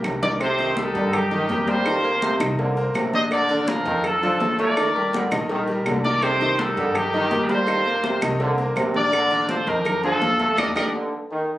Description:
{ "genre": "latin, salsa", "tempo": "165 BPM", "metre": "4/4", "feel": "straight", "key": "Bb major", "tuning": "A4 = 441 Hz", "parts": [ { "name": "bright concert grand piano", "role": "accompaniment", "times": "0.0-10.9 s", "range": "D3 to Eb5", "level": "-27 LUFS", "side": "equal", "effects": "none" }, { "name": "upright bass", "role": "bass", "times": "0.0-10.9 s", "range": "Bb1 to G2", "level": "-30 LUFS", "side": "equal", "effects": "none" }, { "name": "claves", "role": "percussion", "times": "0.0-10.8 s", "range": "none", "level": "-30 LUFS", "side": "equal", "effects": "none" }, { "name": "congas", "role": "percussion", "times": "0.0-10.8 s", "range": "none", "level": "-29 LUFS", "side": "left 1 dB", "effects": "none" }, { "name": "cowbell and bongos", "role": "percussion", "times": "0.0-10.8 s", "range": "none", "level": "-33 LUFS", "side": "equal", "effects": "none" }, { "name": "timbales and agogo bells", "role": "percussion", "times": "0.0-10.8 s", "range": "none", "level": "-32 LUFS", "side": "right 1 dB", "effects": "none" }, { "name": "bright trumpet section", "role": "melody", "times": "0.2-10.9 s", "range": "Eb4 to Eb5", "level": "-22 LUFS", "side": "equal", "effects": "none" }, { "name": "clear trombone section", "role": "second line", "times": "0.4-11.5 s", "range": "C3 to A3", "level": "-26 LUFS", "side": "right 1 dB", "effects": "none" } ], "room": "moderate studio reverb, RT60 0.5 s", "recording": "recorded on a phone in the room, club reverb", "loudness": "-19 LUFS", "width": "side -15 dB against mid", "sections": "0.4-11.6 A section", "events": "drum fill 0.0-0.4, 10.6-11.6; band accent 10.6-11.6", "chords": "0.4 Cm7; 1.9 F7sus4; 3.3 Bbmaj7; 4.8 Ebmaj7; 6.2 Cm7; 7.7 F7sus4; 9.1 Bbmaj7; 10.6 Ebmaj7", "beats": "0.04 | 0.41 0.77 1.14 1.50 | 1.86 2.23 2.59 2.95 | 3.32 3.68 4.04 4.41 | 4.77 5.13 5.50 5.86 | 6.22 6.59 6.95 7.31 | 7.68 8.04 8.40 8.77 | 9.13 9.49 9.85 10.22 | 10.58 10.94 11.31" }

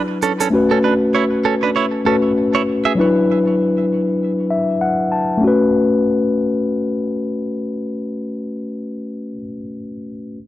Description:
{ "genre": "afrobeats", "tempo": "98 BPM", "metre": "4/4", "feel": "swing 58% on 16ths", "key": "A major", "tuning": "A4 = 441 Hz", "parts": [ { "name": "mellow tine electric piano", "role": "accompaniment", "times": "0.0-10.4 s", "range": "F#3 to A5", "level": "-16 LUFS", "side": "left 2 dB", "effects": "none" }, { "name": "direct-recorded clean electric guitar", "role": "riff", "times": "0.2-2.9 s", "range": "C#4 to E5", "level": "-20 LUFS", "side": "right 7 dB", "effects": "tape echo" }, { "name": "shaker", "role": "drums", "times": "0.2-0.5 s", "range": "none", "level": "-31 LUFS", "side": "right 1 dB", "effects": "none" } ], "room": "digital ambience", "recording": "dry, gritty hardware recording", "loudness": "-15 LUFS", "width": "side -14 dB against mid", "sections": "0.0-5.4 A section; 5.4-7.9 B section", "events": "tine electric piano fill 4.2-5.4", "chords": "0.0 D69; 0.5 A69; 3.0 D69; 5.4 A69", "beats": "| 0.53 1.14 1.75 2.37 | 2.98 3.59 4.20 4.81 | 5.43 6.04 6.65 7.26" }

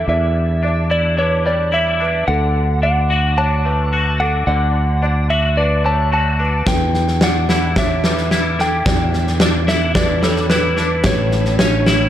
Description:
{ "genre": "post-rock", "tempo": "109 BPM", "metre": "4/4", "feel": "straight", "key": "E dorian", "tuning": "A4 = 440 Hz", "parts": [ { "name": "electric slide guitar", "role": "melody", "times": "0.0-12.1 s", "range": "A4 to A5", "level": "-20 LUFS", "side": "equal", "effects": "tape echo" }, { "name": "felt-muted upright piano", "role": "arpeggios", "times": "0.0-12.1 s", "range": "D4 to D5", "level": "-28 LUFS", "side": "right 3 dB", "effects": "tape echo" }, { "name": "twangy electric guitar", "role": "arpeggios", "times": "0.0-12.1 s", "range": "E2 to F#4", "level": "-22 LUFS", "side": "left 2 dB", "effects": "ensemble chorus, tape echo" }, { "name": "fingered electric bass", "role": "bass", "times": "0.0-12.1 s", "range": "A1 to E2", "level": "-18 LUFS", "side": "equal", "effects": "none" }, { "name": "big rock drum kit", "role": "drums", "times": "6.7-12.0 s", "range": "kick drum, snare drum", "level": "-17 LUFS", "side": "equal", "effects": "none" } ], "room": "light reverb, studio reverb", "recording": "none", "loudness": "-14 LUFS", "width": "side -11 dB against mid", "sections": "0.0-12.1 A section", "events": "none", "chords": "0.0 Em7; 2.3 D; 6.7 Em7; 11.1 Aadd9", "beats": "| 0.08 0.63 1.18 1.73 | 2.28 2.83 3.38 3.93 | 4.48 5.03 5.57 6.12 | 6.67 7.22 7.77 8.31 | 8.86 9.41 9.96 10.50 | 11.05 11.60" }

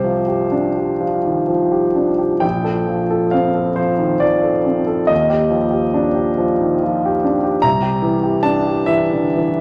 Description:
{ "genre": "classical, impressionist solo piano", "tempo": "38-50 BPM (dotted quarters)", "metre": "6/8", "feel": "rubato", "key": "unclear", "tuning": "A4 = 440 Hz", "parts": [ { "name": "clear concert grand piano", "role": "solo", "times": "0.0-9.6 s", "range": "Bb1 to Bb5", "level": "-17 LUFS", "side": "equal", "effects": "none" } ], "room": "wet recital hall reverb, RT60 1.5 s", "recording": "vinyl crackle", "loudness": "-17 LUFS", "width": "mono", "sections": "0.0-9.6 A section", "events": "none", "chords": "0.0 Cmadd9; 2.4 Bbmaj9; 5.1 Ebmaj9; 7.6 C9", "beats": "1.03 | 2.44 3.79 | 5.11 6.39 | 7.63 8.89" }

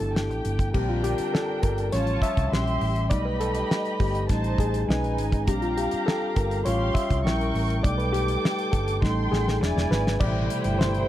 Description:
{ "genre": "lush 1970s-style soul", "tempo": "102 BPM", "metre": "4/4", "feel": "straight", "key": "unclear", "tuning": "A4 = 438 Hz", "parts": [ { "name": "dark studio violin section", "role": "second line", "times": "0.0-11.1 s", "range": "D4 to D6", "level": "-30 LUFS", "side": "right 1 dB", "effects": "none" }, { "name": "overdriven reed electric piano", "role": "accompaniment", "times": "0.0-11.1 s", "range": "B2 to E5", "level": "-27 LUFS", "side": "left 2 dB", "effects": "none" }, { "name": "hollow-body short-scale fingered electric bass", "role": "bass", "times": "0.0-11.0 s", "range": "E1 to B#1", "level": "-27 LUFS", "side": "equal", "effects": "none" }, { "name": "damped 70s drum kit", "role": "drums", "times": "0.0-11.1 s", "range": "crash cymbal, hi-hat, kick drum, snare drum", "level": "-26 LUFS", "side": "equal", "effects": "none" }, { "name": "tonewheel organ", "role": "sustained chords", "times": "10.2-11.1 s", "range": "E3 to G4", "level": "-31 LUFS", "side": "right 3 dB", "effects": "overdrive, chorus vibrato, slow rotary speaker" } ], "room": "small room reverb", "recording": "dry, close 1970s-style studio recording", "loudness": "-22 LUFS", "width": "side -13 dB against mid", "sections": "0.7-10.2 A section", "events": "reed electric piano solo 0.7-10.2; drum fill 9.0-10.2", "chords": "0.0 G7; 0.7 Bb6; 1.9 A7alt; 2.5 A#dim7; 3.1 Baug7; 4.3 Am7b5; 4.9 B6; 5.5 Bb6; 6.7 A7alt; 7.2 A#dim7; 7.8 B7alt; 9.0 Am7b5; 9.6 E7; 10.2 Am7", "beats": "0.15 | 0.74 1.33 1.93 2.52 | 3.11 3.70 4.29 4.88 | 5.48 6.07 6.66 7.25 | 7.84 8.43 9.02 9.61 | 10.21 10.80" }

